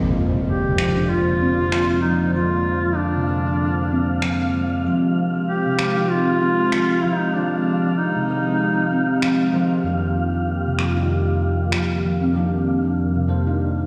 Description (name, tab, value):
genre	organic downtempo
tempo	96 BPM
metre	4/4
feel	swing 58% on 16ths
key	F dorian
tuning	A4 = 440 Hz
part	bell-like tine electric piano	accompaniment	0.0-13.9 s	F2 to D5	-27 LUFS	equal	ensemble chorus, diffuse ambient delay
part	warm analog pad	sustained chords	0.0-13.9 s	F2 to D5	-27 LUFS	equal	chorus
part	steel tongue drum	arpeggios	0.0-13.6 s	C3 to Eb4	-26 LUFS	equal	low-pass filter, diffuse ambient delay
part	impact	sound effects	0.0-2.3 s	none	-30 LUFS	equal	none
part	wind-like tuned noise texture	texture	1.2-13.9 s	F5	-34 LUFS	equal	built-in reverb
part	warm duduk	melody	0.5-9.5 s	D4 to G4	-25 LUFS	equal	analog delay
part	electronic finger snaps	drums	0.8-11.9 s	none	-31 LUFS	equal	none
room	wet lush hall reverb, RT60 1.8 s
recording	dreamy mix soaked in reverb, small room ambience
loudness	-20 LUFS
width	mono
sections	0.0-13.9 A section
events	impact 0.0-2.4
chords	0.0 Bb7/F; 4.8 Fm7; 9.8 Ebmaj7/F